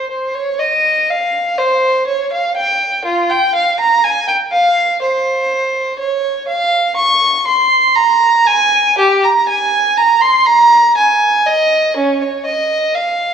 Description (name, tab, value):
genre	classical, baroque-style suite movement for unaccompanied violin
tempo	61 BPM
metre	3/4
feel	rubato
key	F minor, Ab major from 6.0 s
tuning	A4 = 441 Hz
part	warm violin	solo	0.0-13.3 s	Db4 to Db6	-11 LUFS	right 1 dB	none
room	moderate recital hall reverb, RT60 1.7 s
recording	worn, warbling old tape, cassette tape, warbly pitch drift, small room reverb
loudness	-11 LUFS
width	side -7 dB against mid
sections	0.0-13.3 A section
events	none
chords	none